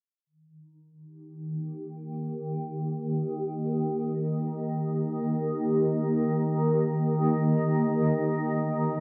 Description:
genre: ambient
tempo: free time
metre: none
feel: none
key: Eb major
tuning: A4 = 440 Hz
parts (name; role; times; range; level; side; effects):
- shimmering ambient pad; sustained chords; 1.4-9.0 s; Eb3 to Bb5; -28 LUFS; equal; chorus, built-in reverb, phaser
room: wet concert hall reverb, RT60 1.9 s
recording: dark, warm production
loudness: -28 LUFS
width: mono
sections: 0.2-9.0 A section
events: filter sweep on ambient pad 0.2-9.0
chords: 0.2 Eb

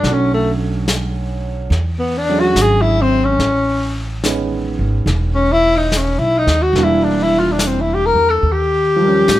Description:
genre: jazz ballad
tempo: 71 BPM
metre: 4/4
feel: swing 68% on 8ths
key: unclear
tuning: A4 = 440 Hz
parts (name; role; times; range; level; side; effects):
- breathy tenor saxophone; melody; 0.0-9.4 s; A3 to Bb4; -15 LUFS; left 2 dB; plate reverb
- clear baby grand piano; accompaniment; 0.0-9.4 s; D3 to Bb4; -21 LUFS; right 4 dB; none
- upright bass; bass; 0.0-9.4 s; E1 to A2; -19 LUFS; equal; none
- vintage brush drum kit; drums; 0.0-9.4 s; brushed snare drum, hi-hat, snare drum; -24 LUFS; left 2 dB; none
room: moderate studio reverb, RT60 0.7 s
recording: none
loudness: -13 LUFS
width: side -14 dB against mid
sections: 0.0-9.4 A section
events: tenor saxophone solo 0.0-9.4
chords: 0.0 Bm7; 1.7 E13; 3.4 Amaj9#11; 6.8 Em7b5; 8.4 Eb9

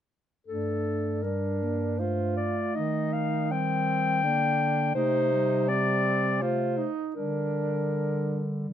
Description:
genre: classical, lyrical piece for single-reed quartet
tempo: 81 BPM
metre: 3/4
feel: uneven beats, rubato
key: G minor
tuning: A4 = 440 Hz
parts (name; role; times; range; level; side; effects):
- mellow clarinet; melody; 0.5-8.7 s; A4 to G5; -28 LUFS; left 5 dB; none
- warm alto saxophone; second line; 0.5-8.7 s; C4 to F4; -32 LUFS; right 8 dB; none
- mellow clarinet; accompaniment; 0.5-8.7 s; G3 to Bb3; -33 LUFS; left 1 dB; none
- mellow bass clarinet; bass; 0.5-8.7 s; G2 to Eb3; -31 LUFS; right 2 dB; none
room: light reverb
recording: none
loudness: -25 LUFS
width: side -10 dB against mid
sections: 0.5-8.7 A section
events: none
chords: 0.5 Gm; 2.7 Eb; 5.0 Cm; 7.2 Gm/D

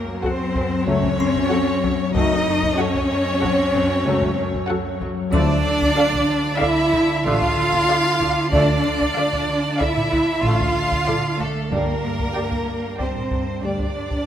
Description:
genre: cinematic, suspense film score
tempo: 94 BPM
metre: 5/4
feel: straight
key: unclear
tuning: A4 = 440 Hz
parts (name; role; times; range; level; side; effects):
- rich chamber violin section; melody; 0.0-13.5 s; F5 to G5; -34 LUFS; equal; none
- bright chamber violin section; second line; 0.0-14.3 s; A4 to F5; -25 LUFS; right 1 dB; none
- rich studio viola section; accompaniment; 0.0-13.5 s; Gb4 to D5; -32 LUFS; equal; none
- concert harp; riff; 0.0-14.3 s; Gb2 to D4; -26 LUFS; left 2 dB; none
- warm chamber cello section; bass; 0.0-14.3 s; A3 to F4; -22 LUFS; equal; none
- taiko ensemble; drums; 0.2-14.3 s; none; -29 LUFS; equal; none
- clear trombone section; sustained chords; 0.9-13.9 s; D3 to A3; -31 LUFS; equal; none
- warm French horn section; sustained chords; 0.9-13.9 s; F3 to D5; -31 LUFS; right 1 dB; none
- rich chamber double bass section; bass; 0.9-14.1 s; Gb1 to G2; -26 LUFS; equal; none
- music box; texture; 1.2-10.7 s; C4 to E6; -30 LUFS; left 3 dB; none
room: moderate cathedral reverb, RT60 5.5 s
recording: in a vast, echoing space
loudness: -18 LUFS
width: side -10 dB against mid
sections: 0.0-14.3 A section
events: none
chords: 0.0 Gbm; 5.3 Dm; 11.7 Gm

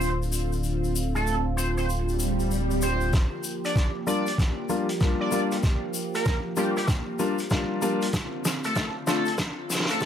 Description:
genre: glitch hop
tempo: 96 BPM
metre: 4/4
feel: swing 64% on 16ths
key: G minor pentatonic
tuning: A4 = 440 Hz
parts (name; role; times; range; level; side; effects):
- sync lead; melody; 0.0-10.1 s; G4 to D5; -31 LUFS; right 1 dB; lush chorus, digital delay
- warm analog pad; sustained chords; 0.0-10.1 s; D3 to G4; -32 LUFS; equal; chorus, vintage 12-bit sampler grit, sidechain pumping
- gritty driven synth bass; bass; 0.0-3.1 s; D1; -27 LUFS; equal; overdrive
- tube shaker; percussion; 0.0-10.1 s; none; -36 LUFS; left 6 dB; none
- swell; sound effects; 2.0-3.1 s; none; -29 LUFS; right 2 dB; none
- electronic kick drum; drums; 3.1-10.1 s; none; -24 LUFS; equal; overdrive
- loose indie drum kit; drums; 3.1-10.1 s; hi-hat, rim click, snare drum; -30 LUFS; equal; low-pass filter on hats, low-pass filter on snare, low-pass filter on room
- clear grand piano; stabs; 4.1-9.2 s; G3 to F4; -27 LUFS; left 3 dB; vintage 12-bit sampler grit, sidechain pumping, low-pass filter, digital delay
room: moderate studio reverb, RT60 0.5 s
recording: high-pass filter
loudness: -24 LUFS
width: side -9 dB against mid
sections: 0.0-3.1 A section; 3.1-10.1 B section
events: swell 2.0-3.1; build-up 3.1-10.1; drum fill 3.1-10.1; filter sweep on grand piano 3.1-10.1; filter sweep 3.1-10.1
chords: 0.0 Dm7; 3.1 Gm7; 8.1 Dm7

